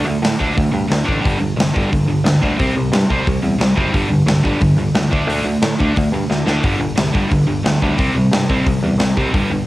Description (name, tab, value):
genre	punk rock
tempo	178 BPM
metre	4/4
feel	straight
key	unclear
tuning	A4 = 440 Hz
part	distorted electric guitar	riff	0.0-9.7 s	G2 to D4	-17 LUFS	equal	distortion
part	picked electric bass	bass	0.0-9.6 s	F#1 to A2	-22 LUFS	equal	none
part	big rock drum kit	drums	0.2-9.4 s	hi-hat, kick drum, snare drum	-19 LUFS	equal	none
room	small room ambience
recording	home recording on cassette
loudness	-14 LUFS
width	side -17 dB against mid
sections	0.0-9.7 A section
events	drum fill 6.3-6.6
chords	0.0 D5; 1.2 G5; 2.6 C5; 3.9 G5; 5.1 D5; 6.6 G5; 8.0 C5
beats	0.23 0.57 0.90 | 1.24 1.58 1.91 2.25 | 2.59 2.92 3.26 3.60 | 3.94 4.27 4.61 4.95 | 5.29 5.62 5.96 6.30 | 6.64 6.98 7.32 7.65 | 7.99 8.33 8.67 9.01 | 9.34